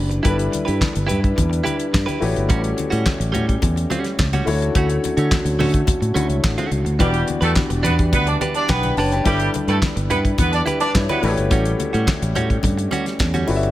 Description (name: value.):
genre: disco.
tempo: 107 BPM.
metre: 4/4.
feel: straight.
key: unclear.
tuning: A4 = 440 Hz.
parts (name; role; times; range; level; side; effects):
warm grand piano; accompaniment; 0.0-13.7 s; D3 to A5; -26 LUFS; left 4 dB; none.
dark French horn section; sustained chords; 0.0-13.7 s; D3 to B4; -27 LUFS; equal; none.
fingered electric bass; bass; 0.0-13.7 s; E1 to D3; -21 LUFS; equal; none.
direct-recorded clean electric guitar; accompaniment; 0.1-13.7 s; G3 to B4; -26 LUFS; right 4 dB; spring reverb.
damped 70s drum kit; drums; 0.1-13.7 s; handclaps, hi-hat, kick drum, snare drum; -22 LUFS; equal; none.
congas; percussion; 0.5-13.6 s; none; -30 LUFS; left 4 dB; none.
clear horn section; stabs; 7.0-11.3 s; G3 to D5; -23 LUFS; right 2 dB; none.
room: light reverb, small room ambience.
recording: none.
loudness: -17 LUFS.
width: side -14 dB against mid.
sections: 0.0-13.7 A section.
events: none.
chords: 0.3 G6; 2.2 A13; 4.5 Dmaj7; 7.0 Em7; 9.3 G6.